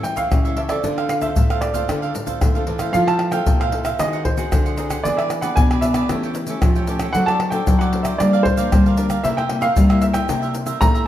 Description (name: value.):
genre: samba and choro.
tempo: 114 BPM.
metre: 4/4.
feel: straight.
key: F major.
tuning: A4 = 440 Hz.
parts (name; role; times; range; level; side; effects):
dark baby grand piano; melody; 0.0-11.1 s; C5 to Bb5; -22 LUFS; right 1 dB; none.
cavaquinho; accompaniment; 0.0-11.1 s; D4 to G5; -28 LUFS; right 6 dB; none.
nylon-string guitar; accompaniment; 0.0-11.1 s; G2 to A4; -28 LUFS; left 3 dB; none.
nylon-string guitar; bass; 0.0-11.1 s; A2 to A3; -22 LUFS; equal; none.
tube shaker, pandeiro, surdo and tamborim; percussion; 0.0-11.1 s; none; -20 LUFS; left 1 dB; none.
room: moderate large studio reverb, RT60 1.2 s.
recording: minimal, uncompressed stereo recording.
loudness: -16 LUFS.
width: side -12 dB against mid.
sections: 0.0-2.9 A section; 2.9-11.1 B section.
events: none.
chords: 0.0 A7; 0.8 Dm7; 2.9 Fmaj7; 4.0 Ab7/Eb; 5.0 E7; 6.1 A7/E; 7.1 D7/F#; 8.2 Gm7; 9.2 C7.